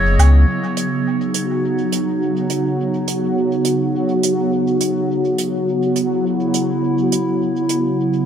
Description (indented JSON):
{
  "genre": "ambient dub",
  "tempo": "104 BPM",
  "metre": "4/4",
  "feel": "swing 59% on 16ths",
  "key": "unclear",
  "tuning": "A4 = 442 Hz",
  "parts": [
    { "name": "warbly tape-like pad", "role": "sustained chords", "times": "0.0-8.3 s", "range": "C#3 to E4", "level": "-18 LUFS", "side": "right 1 dB", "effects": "chorus, built-in reverb" },
    { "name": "hi-hat and woodblock", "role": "drums", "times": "0.2-7.8 s", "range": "none", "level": "-24 LUFS", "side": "right 5 dB", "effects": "dub echo" },
    { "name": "bubbling stepped-filter texture", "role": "texture", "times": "0.5-8.3 s", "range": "F#3 to F#4", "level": "-22 LUFS", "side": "left 1 dB", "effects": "chorus, built-in reverb" }
  ],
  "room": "moderate concert hall reverb, RT60 2.1 s",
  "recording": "none",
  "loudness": "-16 LUFS",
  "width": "side -8 dB against mid",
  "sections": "0.5-8.3 A section",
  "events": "none",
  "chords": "0.5 B; 5.1 F#5"
}